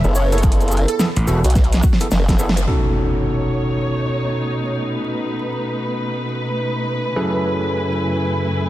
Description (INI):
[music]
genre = glitch hop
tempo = 107 BPM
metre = 4/4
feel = swing 61% on 16ths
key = unclear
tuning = A4 = 442 Hz
[part]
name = overdriven tine electric piano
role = stabs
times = 0.0-8.7 s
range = B2 to B4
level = -23 LUFS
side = equal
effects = sidechain pumping, digital delay
[part]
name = formant-sweep wobble bass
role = bass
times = 0.0-2.7 s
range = F#1 to B1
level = -17 LUFS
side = equal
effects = chorus
[part]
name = cabasa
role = percussion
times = 0.0-2.7 s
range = none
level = -34 LUFS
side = left 1 dB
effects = none
[part]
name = plucky unison lead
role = melody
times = 0.2-1.5 s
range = F#4 to C#5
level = -26 LUFS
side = right 2 dB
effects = ensemble chorus, digital delay
[part]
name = pop drum kit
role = drums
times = 0.3-2.7 s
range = hi-hat, rim click, snare drum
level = -22 LUFS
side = right 1 dB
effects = overdrive, low-pass filter on hats, low-pass filter on snare, low-pass filter on room
[part]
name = electronic kick drum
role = drums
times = 0.4-2.4 s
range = none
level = -16 LUFS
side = equal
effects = overdrive
[part]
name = gritty slap bass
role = bass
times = 1.2-1.4 s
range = E1 to A1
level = -16 LUFS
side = equal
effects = overdrive
[part]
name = muted studio string section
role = sustained chords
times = 2.7-8.7 s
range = F#2 to G#5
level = -23 LUFS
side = equal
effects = sidechain pumping
[part]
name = impact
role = sound effects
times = 2.7-4.9 s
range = none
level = -24 LUFS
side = equal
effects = none
[sound]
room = light reverb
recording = dense, heavily limited modern master, vinyl crackle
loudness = -17 LUFS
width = side -14 dB against mid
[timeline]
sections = 0.0-2.7 A section; 2.7-8.7 B section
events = drum fill 1.6-2.7; band accent 2.5; impact 2.7-4.9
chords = 0.0 F#m11; 2.7 B9; 7.2 F#m11